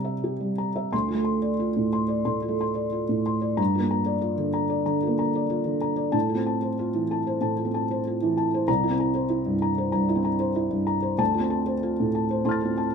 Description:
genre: neoclassical minimalist piano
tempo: 93 BPM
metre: 4/4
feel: uneven beats, rubato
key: D minor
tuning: A4 = 440 Hz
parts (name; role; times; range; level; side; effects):
- felt-muted upright piano; solo; 0.0-12.9 s; C2 to A6; -23 LUFS; equal; none
room: light reverb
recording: minimal, uncompressed stereo recording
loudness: -23 LUFS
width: side -6 dB against mid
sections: 0.9-12.9 A section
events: none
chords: 0.0 C7; 0.9 Dm7; 3.6 Gm7; 6.1 Fmaj7/A; 8.7 C7; 11.2 Dm7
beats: 0.22 | 0.93 1.60 2.27 2.94 | 3.59 4.23 4.88 5.51 | 6.14 6.78 7.41 8.05 | 8.68 9.30 9.94 10.57 | 11.20 11.83 12.46

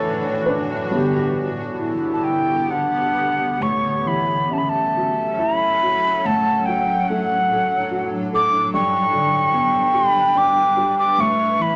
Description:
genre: celtic folk, Celtic slow air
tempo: 63-74 BPM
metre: 3/4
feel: rubato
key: A mixolydian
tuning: A4 = 440 Hz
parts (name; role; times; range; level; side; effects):
- baroque flute; second line; 0.0-11.8 s; D4 to G5; -24 LUFS; equal; none
- dark upright piano; accompaniment; 0.0-11.8 s; G2 to D5; -28 LUFS; equal; none
- granular cloud pad; sustained chords; 0.0-11.8 s; A2 to B4; -30 LUFS; equal; built-in reverb
- breathy mellow mid whistle; melody; 2.1-11.8 s; F#5 to D6; -22 LUFS; equal; none
room: moderate studio ambience, RT60 0.5 s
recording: none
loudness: -19 LUFS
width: mono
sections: 0.0-3.6 A section; 3.6-11.8 B section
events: upright piano solo 0.0-3.6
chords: 0.0 Dadd9/A; 0.9 G; 3.6 A6; 6.2 D/A; 8.7 G; 11.2 A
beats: 0.07 | 0.92 1.77 2.68 | 3.61 4.50 5.38 | 6.25 7.08 7.92 | 8.74 9.56 10.38 | 11.21

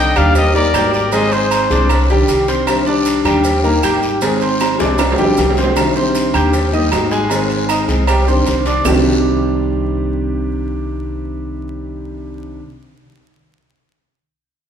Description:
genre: latin, Cuban son and guajira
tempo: 155 BPM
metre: 4/4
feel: straight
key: C minor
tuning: A4 = 440 Hz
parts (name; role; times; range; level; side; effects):
- clear trumpet; melody; 0.0-1.9 s; C5 to G5; -18 LUFS; left 3 dB; none
- bright trumpet; second line; 0.0-1.9 s; Ab4 to Eb5; -25 LUFS; right 2 dB; none
- nylon-string guitar; accompaniment; 0.0-12.6 s; C3 to Ab4; -20 LUFS; left 3 dB; none
- bright concert grand piano; arpeggios; 0.0-12.6 s; C3 to G6; -19 LUFS; right 2 dB; none
- upright bass; bass; 0.0-12.6 s; Ab1 to Eb2; -20 LUFS; equal; none
- agogo bells and timbales; percussion; 0.2-8.9 s; none; -22 LUFS; right 4 dB; none
- claves; percussion; 0.2-8.9 s; none; -30 LUFS; right 4 dB; none
- cowbell and bongos; percussion; 0.2-8.9 s; none; -24 LUFS; left 2 dB; none
- guiro; percussion; 0.2-8.9 s; none; -29 LUFS; left 3 dB; none
- maracas; percussion; 0.2-8.9 s; none; -31 LUFS; right 5 dB; none
room: wet recital hall reverb, RT60 1.5 s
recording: recorded in a church or concert hall, vinyl crackle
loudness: -13 LUFS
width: side -8 dB against mid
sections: 0.0-5.8 A section; 5.8-8.9 B section; 8.9-11.9 C section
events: drum fill 4.6-5.8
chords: 0.4 Eb; 1.1 Ab; 1.9 Cmadd9; 3.4 Eb; 4.2 Ab; 5.0 Cmadd9; 6.5 Eb; 7.3 Ab; 8.1 Cmadd9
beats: 0.36 0.74 | 1.13 1.52 1.90 2.29 | 2.67 3.06 3.44 3.83 | 4.22 4.60 4.99 5.38 | 5.76 6.15 6.53 6.92 | 7.31 7.69 8.08 8.46 | 8.85 9.24 9.62 10.01 | 10.40 10.78 11.17 11.56

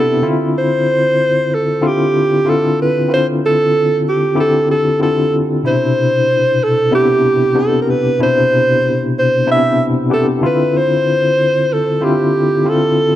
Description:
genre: soul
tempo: 94 BPM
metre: 4/4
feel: swing 58% on 16ths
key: unclear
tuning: A4 = 440 Hz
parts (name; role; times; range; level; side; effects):
- warm alto saxophone; melody; 0.0-13.2 s; G4 to E5; -14 LUFS; right 1 dB; none
- barky tine electric piano; accompaniment; 0.0-13.2 s; B2 to G4; -16 LUFS; left 2 dB; overdrive, fast tremolo
room: light reverb, studio ambience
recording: dark, warm production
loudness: -12 LUFS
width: side -12 dB against mid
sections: 0.0-13.2 A section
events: none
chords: 0.2 Dm9; 5.6 Cmaj9; 10.4 Dm9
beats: | 0.55 1.19 1.82 2.46 | 3.10 3.73 4.37 5.01 | 5.64 6.28 6.92 7.55 | 8.19 8.83 9.46 10.10 | 10.74 11.38 12.01 12.65

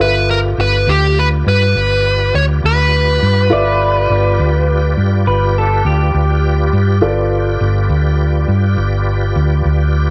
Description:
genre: slow blues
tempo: 68 BPM (dotted quarters)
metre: 12/8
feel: straight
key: G mixolydian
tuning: A4 = 440 Hz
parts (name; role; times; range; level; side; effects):
- dark smooth lead guitar; melody; 0.0-5.0 s; G4 to C#5; -17 LUFS; equal; overdrive
- warm concert grand piano; accompaniment; 0.0-10.1 s; F4 to E5; -23 LUFS; equal; none
- tonewheel organ; sustained chords; 0.0-10.1 s; F4 to D5; -25 LUFS; equal; slow rotary speaker, overdrive, chorus vibrato
- hollow-body short-scale fingered electric bass; bass; 0.0-10.1 s; G1 to G2; -16 LUFS; equal; none
- electric guitar through a small old amp; second line; 3.5-7.0 s; G4 to D5; -21 LUFS; equal; none
room: light reverb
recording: none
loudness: -14 LUFS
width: mono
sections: 0.0-10.1 A section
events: none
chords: 0.0 G7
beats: | 0.00 0.88 1.76 2.64 | 3.52 4.39 5.27 6.15 | 7.03 7.91 8.78 9.66

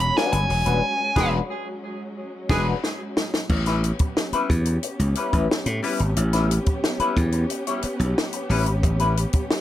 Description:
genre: funk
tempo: 90 BPM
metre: 4/4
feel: straight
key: unclear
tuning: A4 = 440 Hz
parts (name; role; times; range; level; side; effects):
- nasal lead guitar with a parked wah; melody; 0.0-1.3 s; G#5 to B5; -23 LUFS; equal; overdrive, plate reverb
- vintage hollow-body jazz guitar; accompaniment; 0.0-9.5 s; G3 to C#5; -27 LUFS; left 4 dB; wah, plate reverb
- warm studio string section; sustained chords; 0.0-9.6 s; F#3 to G4; -31 LUFS; equal; plate reverb
- slap bass; bass; 0.0-9.2 s; D#1 to A2; -22 LUFS; equal; none
- compact cocktail drum kit; drums; 0.0-9.6 s; crash cymbal, hi-hat, kick drum, snare drum; -24 LUFS; equal; none
- warm tenor saxophone; second line; 1.2-2.7 s; G#4; -31 LUFS; right 3 dB; plate reverb, tape echo
room: light reverb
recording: none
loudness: -20 LUFS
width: side -13 dB against mid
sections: 0.0-3.5 A section; 3.5-9.6 B section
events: lead electric guitar solo 0.0-3.5; band accent 0.8-3.5; drum fill 2.2-3.5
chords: 0.0 E9; 3.5 A9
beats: 0.16 | 0.83 1.50 2.16 2.83 | 3.50 4.16 4.83 5.50 | 6.16 6.83 7.50 8.16 | 8.83 9.50

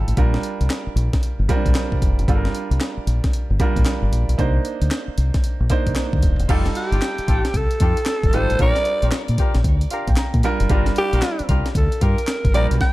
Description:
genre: R&B, new jack swing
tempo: 114 BPM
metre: 4/4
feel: swing 64% on 16ths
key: G minor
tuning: A4 = 440 Hz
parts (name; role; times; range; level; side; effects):
- warm concert grand piano; accompaniment; 0.0-12.8 s; G3 to Bb5; -26 LUFS; right 4 dB; none
- deep dub fingered electric bass; bass; 0.0-12.8 s; Eb1 to Bb2; -20 LUFS; equal; none
- breakbeat sampler-style drum kit; drums; 0.1-12.9 s; crash cymbal, handclaps, hi-hat, kick drum, snare drum; -20 LUFS; equal; none
- mellow horn section; stabs; 6.5-12.7 s; D4 to Bb4; -30 LUFS; left 4 dB; none
- breathy alto saxophone; melody; 6.8-12.9 s; G4 to G5; -23 LUFS; equal; ping-pong delay
room: studio ambience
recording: dark, warm production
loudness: -17 LUFS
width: side -18 dB against mid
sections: 0.0-6.5 A section; 6.5-12.9 B section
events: grand piano fill 9.6-10.7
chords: 0.2 Bb6; 2.3 Gm7; 4.4 Cm9; 6.5 F9; 8.6 Bb6; 10.7 Gm7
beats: | 0.18 0.70 1.23 1.75 | 2.28 2.81 3.33 3.86 | 4.39 4.91 5.44 5.96 | 6.49 7.02 7.54 8.07 | 8.60 9.12 9.65 10.18 | 10.70 11.23 11.76 12.28 | 12.81

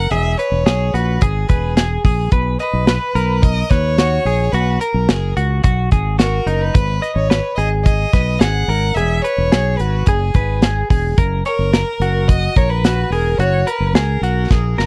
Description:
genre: jangly indie pop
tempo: 108 BPM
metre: 4/4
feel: straight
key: B major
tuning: A4 = 440 Hz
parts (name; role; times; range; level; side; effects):
- clear violin; melody; 0.0-14.8 s; G#4 to F#5; -25 LUFS; equal; none
- direct-recorded clean electric guitar; arpeggios; 0.0-14.9 s; D#4 to D#5; -24 LUFS; equal; analog chorus
- fingered electric bass; bass; 0.0-14.9 s; E1 to D#2; -20 LUFS; equal; none
- modern studio drum kit; drums; 0.1-14.9 s; hi-hat, kick drum, snare drum; -16 LUFS; equal; none
room: little or no reverb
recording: dry, close 1970s-style studio recording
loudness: -16 LUFS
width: mono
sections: 0.0-14.9 A section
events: drum fill 14.5-14.9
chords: 0.1 E; 2.3 B; 6.8 G#m; 9.0 E; 11.2 F#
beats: | 0.11 0.66 1.22 1.77 | 2.32 2.88 3.43 3.98 | 4.54 5.09 5.64 6.20 | 6.75 7.30 7.86 8.41 | 8.96 9.52 10.07 10.63 | 11.18 11.73 12.29 12.84 | 13.40 13.95 14.51

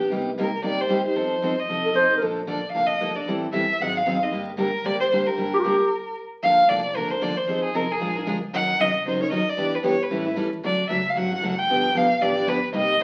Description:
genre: acoustic string swing (jazz manouche)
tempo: 228 BPM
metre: 4/4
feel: swing 57% on 8ths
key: G minor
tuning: A4 = 440 Hz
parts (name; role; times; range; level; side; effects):
- rich violin; melody; 0.0-13.0 s; Ab4 to G5; -25 LUFS; equal; none
- picked steel-string acoustic guitar; accompaniment; 0.0-13.0 s; C3 to Bb4; -28 LUFS; equal; none
- upright bass; bass; 0.0-13.0 s; F1 to A2; -43 LUFS; equal; none
- breathy clarinet; second line; 1.8-2.4, 5.5-5.9 s; F4 to C5; -23 LUFS; equal; none
room: wet studio reverb, RT60 0.8 s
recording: very old 78 rpm record, vinyl crackle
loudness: -23 LUFS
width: mono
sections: 0.0-6.4 A section; 6.4-13.0 B section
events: stop 5.9-6.4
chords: 0.1 Cm7; 1.2 F7; 2.2 Bbmaj7; 3.3 Am7; 3.8 Ab7; 4.3 Gm; 6.4 Bbmaj7; 7.5 Fm7; 8.0 Bb7; 8.5 Ebm7; 9.6 Em7; 10.1 A7; 10.6 Dmaj7; 11.7 G7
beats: | 0.11 0.38 0.64 0.90 | 1.17 1.43 1.69 1.96 | 2.22 2.48 2.75 3.01 | 3.27 3.54 3.80 4.06 | 4.33 4.59 4.85 5.12 | 5.38 5.64 5.91 6.17 | 6.43 6.69 6.96 7.22 | 7.48 7.75 8.01 8.27 | 8.54 8.80 9.06 9.33 | 9.59 9.85 10.12 10.38 | 10.64 10.90 11.17 11.43 | 11.69 11.96 12.22 12.48 | 12.74 13.01

